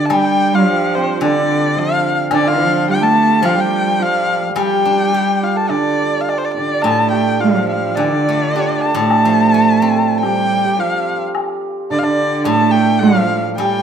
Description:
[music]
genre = chinese traditional, Chinese chamber ensemble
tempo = 107 BPM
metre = 4/4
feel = rubato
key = A jue mode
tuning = A4 = 443 Hz
[part]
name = warm erhu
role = melody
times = 0.0-13.8 s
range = C5 to A5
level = -17 LUFS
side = left 2 dB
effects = none
[part]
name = dark cello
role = second line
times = 0.0-13.8 s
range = D3 to A3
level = -18 LUFS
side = right 5 dB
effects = none
[part]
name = hammered dulcimer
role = second line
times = 0.0-13.8 s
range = C4 to A4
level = -19 LUFS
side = right 4 dB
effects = none
[part]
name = steel-string zither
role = accompaniment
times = 0.0-13.8 s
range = A2 to G4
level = -22 LUFS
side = left 4 dB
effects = none
[part]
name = woodblock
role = percussion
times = 0.1-13.7 s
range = none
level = -25 LUFS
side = left 6 dB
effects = none
[sound]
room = moderate recital hall reverb, RT60 1.6 s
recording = minimal, uncompressed stereo recording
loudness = -13 LUFS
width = side -8 dB against mid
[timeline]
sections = 0.0-13.8 A section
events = none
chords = none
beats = | 0.10 0.66 1.21 1.77 | 2.32 2.88 3.44 4.00 | 4.57 5.13 5.70 6.28 | 6.86 7.43 7.99 8.55 | 9.12 9.68 10.24 10.79 | 11.35 11.91 12.47 13.03 | 13.59

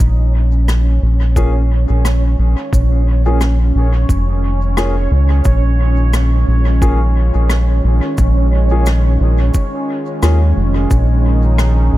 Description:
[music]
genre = ambient dub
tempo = 88 BPM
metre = 4/4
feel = swing 56% on 16ths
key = Bb minor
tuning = A4 = 440 Hz
[part]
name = warm analog pad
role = sustained chords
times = 0.0-12.0 s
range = Eb3 to F4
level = -26 LUFS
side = equal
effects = chorus
[part]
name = round analog bass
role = bass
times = 0.0-12.0 s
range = F1 to Eb2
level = -12 LUFS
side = equal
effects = none
[part]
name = cabasa and rim click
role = drums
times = 0.0-11.7 s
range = none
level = -27 LUFS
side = left 2 dB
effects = dub echo
[part]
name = electronic kick drum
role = drums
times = 0.0-11.1 s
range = none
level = -16 LUFS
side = equal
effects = none
[part]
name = bubbling stepped-filter texture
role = texture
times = 0.0-12.0 s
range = Db4 to Db5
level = -23 LUFS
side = right 2 dB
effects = chorus, built-in reverb
[part]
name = warm upright piano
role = stabs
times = 1.4-10.4 s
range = Bb3 to Ab4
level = -25 LUFS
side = left 2 dB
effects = dub echo
[sound]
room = little or no reverb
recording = echo-heavy mix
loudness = -11 LUFS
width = side -16 dB against mid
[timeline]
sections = 0.0-12.0 A section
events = fade-in on analog synth pad 0.0-12.0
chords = 0.0 Bbm7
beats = | 0.00 0.68 1.36 2.04 | 2.73 3.41 4.09 4.77 | 5.45 6.13 6.82 7.50 | 8.18 8.86 9.54 10.23 | 10.91 11.59

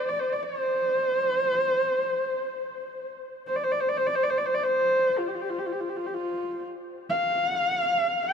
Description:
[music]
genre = mongolian traditional, Mongolian folk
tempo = free time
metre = none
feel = none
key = unclear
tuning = A4 = 440 Hz
[part]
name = warm horsehead fiddle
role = solo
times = 0.0-8.3 s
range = F4 to G5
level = -24 LUFS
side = equal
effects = none
[sound]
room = moderate huge ambient reverb, RT60 6.3 s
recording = dark, warm production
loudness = -24 LUFS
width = side -7 dB against mid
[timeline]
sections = 0.0-6.8 A section; 6.8-8.3 A section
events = none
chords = none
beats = free time

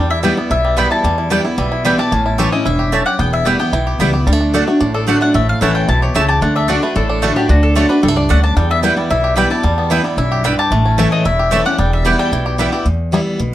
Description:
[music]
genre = bluegrass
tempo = 223 BPM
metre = 4/4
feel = straight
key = E dorian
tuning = A4 = 440 Hz
[part]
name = bluegrass banjo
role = melody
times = 0.0-13.2 s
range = D3 to G4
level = -21 LUFS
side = right 2 dB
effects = none
[part]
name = mandolin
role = melody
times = 0.0-12.6 s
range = F#4 to B5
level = -20 LUFS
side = left 3 dB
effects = none
[part]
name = picked steel-string acoustic guitar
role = accompaniment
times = 0.0-13.5 s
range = E2 to F#4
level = -17 LUFS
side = left 1 dB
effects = none
[part]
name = upright bass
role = bass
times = 0.0-13.5 s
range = E1 to E2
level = -17 LUFS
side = equal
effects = none
[part]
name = mandolin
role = stabs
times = 0.2-12.7 s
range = A3 to A5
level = -19 LUFS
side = right 4 dB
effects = none
[sound]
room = moderate studio reverb, RT60 0.5 s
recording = lossy compression artefacts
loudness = -12 LUFS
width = side -13 dB against mid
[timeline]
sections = 0.0-4.3 A section; 4.3-12.9 A section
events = none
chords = 0.0 Em; 2.1 A; 3.2 Em; 4.3 D; 5.3 A; 6.4 D; 8.6 Em; 10.7 A; 11.8 Em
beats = 0.24 0.51 0.78 | 1.04 1.31 1.58 1.85 | 2.12 2.39 2.66 2.93 | 3.19 3.46 3.73 4.00 | 4.27 4.54 4.81 5.08 | 5.34 5.61 5.88 6.15 | 6.42 6.69 6.96 7.22 | 7.49 7.76 8.03 8.30 | 8.57 8.84 9.11 9.37 | 9.64 9.91 10.18 10.45 | 10.71 10.98 11.25 11.52 | 11.79 12.06 12.32 12.59 | 12.86 13.13 13.40

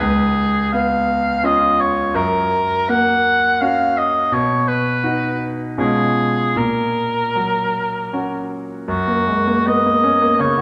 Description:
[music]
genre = classical, romantic duo for oboe and grand piano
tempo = 74-86 BPM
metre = 3/4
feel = rubato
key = F# major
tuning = A4 = 440 Hz
[part]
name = warm oboe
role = melody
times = 0.0-10.6 s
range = F#4 to F#5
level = -20 LUFS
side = equal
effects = none
[part]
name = clear concert grand piano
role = accompaniment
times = 0.0-10.6 s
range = C#2 to F#4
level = -22 LUFS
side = equal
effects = none
[sound]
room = wet recital hall reverb, RT60 1.8 s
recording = none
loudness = -18 LUFS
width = mono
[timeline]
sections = 0.0-8.9 A section; 8.9-10.6 B section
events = none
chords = 0.0 C#7; 2.1 F#; 4.3 B; 5.8 C#7/B; 6.6 F#/A#; 8.9 F#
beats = 0.73 1.44 | 2.15 2.90 3.61 | 4.32 5.03 5.78 | 6.58 7.37 8.13 | 8.89 9.66 10.39

